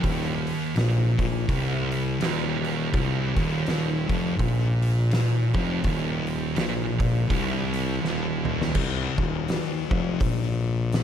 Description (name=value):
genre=stoner and doom metal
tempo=83 BPM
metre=4/4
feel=swing 59% on 8ths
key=C minor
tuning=A4 = 441 Hz
part: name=thick fuzz guitar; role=riff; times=0.0-11.0 s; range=C2 to Bb2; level=-27 LUFS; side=left 6 dB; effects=distortion
part: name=thick fuzz guitar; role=riff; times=0.0-8.7 s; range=C2 to Bb2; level=-27 LUFS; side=right 8 dB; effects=distortion
part: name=mellow tuba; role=bass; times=0.0-11.0 s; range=Eb1 to C2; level=-31 LUFS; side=equal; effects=overdrive
part: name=oversized low-tuned drum kit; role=drums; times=0.0-11.0 s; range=crash cymbal, hi-hat, kick drum, snare drum, toms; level=-28 LUFS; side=equal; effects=none
room=light reverb, small room ambience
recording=none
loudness=-22 LUFS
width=side -9 dB against mid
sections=0.0-8.8 A section; 8.8-11.0 B section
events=drum fill 8.0-8.8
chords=0.0 Cm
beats=| 0.04 0.76 1.49 2.21 | 2.94 3.67 4.39 5.12 | 5.84 6.57 7.30 8.03 | 8.75 9.48 10.21 10.93